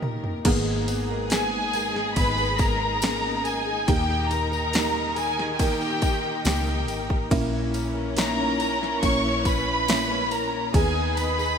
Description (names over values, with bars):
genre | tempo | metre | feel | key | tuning
pop ballad | 70 BPM | 4/4 | straight | G# minor | A4 = 442 Hz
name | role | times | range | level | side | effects
felt-muted upright piano | accompaniment | 0.0-11.6 s | D#2 to A#4 | -29 LUFS | right 3 dB | analog chorus
rich studio string section | sustained chords | 0.0-11.6 s | D#2 to B4 | -34 LUFS | left 2 dB | none
fingerpicked steel-string acoustic guitar | arpeggios | 0.0-11.6 s | G#2 to A#4 | -33 LUFS | left 2 dB | none
house drum kit | drums | 0.0-11.4 s | crash cymbal, kick drum, ride cymbal, snare drum, toms | -27 LUFS | equal | gated reverb
vintage muted fingered electric bass | bass | 0.5-11.6 s | G#1 to D#2 | -30 LUFS | equal | none
tambourine | percussion | 0.5-11.6 s | none | -40 LUFS | left 8 dB | none
warm studio violin section | melody | 1.3-11.6 s | G4 to C#6 | -26 LUFS | equal | none
room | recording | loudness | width
moderate plate reverb, RT60 2.8 s | bright 1980s-style digital production | -22 LUFS | side -7 dB against mid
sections
0.5-11.6 A section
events
drum fill 0.0-0.5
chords
0.5 G#madd9; 7.3 A#dim; 10.7 G#m/D#